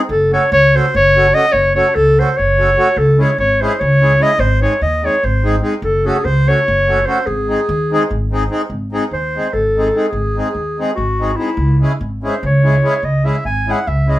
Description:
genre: balkan folk, Balkan wedding band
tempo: 292 BPM (eighths)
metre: 7/8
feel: straight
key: G# phrygian dominant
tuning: A4 = 440 Hz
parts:
  - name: warm clarinet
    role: melody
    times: 0.1-14.2 s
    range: E4 to G#5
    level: -14 LUFS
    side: equal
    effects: none
  - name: upright bass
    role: bass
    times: 0.1-14.2 s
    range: F#1 to D#2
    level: -16 LUFS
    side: equal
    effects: none
  - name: accordion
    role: accompaniment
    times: 0.3-14.2 s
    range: G#3 to A4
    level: -19 LUFS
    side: equal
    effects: none
room: moderate studio ambience, RT60 0.5 s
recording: band playing live in one room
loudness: -12 LUFS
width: side -15 dB against mid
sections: 0.0-8.7 A section; 8.7-14.2 B section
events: clarinet solo 8.7-14.2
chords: 0.1 F#m; 3.0 C#m; 4.4 G#; 5.8 F#m; 7.3 G#; 11.6 C#m

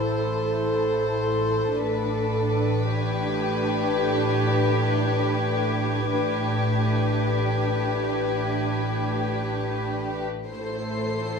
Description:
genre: cinematic, suspense film score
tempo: 55 BPM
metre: 4/4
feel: straight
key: unclear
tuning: A4 = 440 Hz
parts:
  - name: warm symphonic violin section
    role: melody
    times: 0.0-11.4 s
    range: B4 to C5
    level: -29 LUFS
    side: left 6 dB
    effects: none
  - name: dark chamber violin section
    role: second line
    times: 0.0-11.4 s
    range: G4 to A4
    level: -28 LUFS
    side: right 1 dB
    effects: none
  - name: dark symphonic viola section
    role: accompaniment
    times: 0.0-11.4 s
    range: D4 to E4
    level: -31 LUFS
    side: right 3 dB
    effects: none
  - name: rich symphonic cello section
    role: bass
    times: 0.0-11.4 s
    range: A2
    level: -29 LUFS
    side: equal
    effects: none
  - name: rich symphonic double bass section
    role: bass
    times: 0.0-11.4 s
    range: A1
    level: -30 LUFS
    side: right 1 dB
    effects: none
  - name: rich studio violin section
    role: texture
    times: 1.7-11.4 s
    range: D6 to C7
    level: -35 LUFS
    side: left 2 dB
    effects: none
room: moderate scoring stage reverb, RT60 1.5 s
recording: none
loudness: -22 LUFS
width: side -5 dB against mid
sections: 0.0-11.4 A section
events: none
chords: 0.0 Am; 1.8 Gadd9/A; 10.5 Am

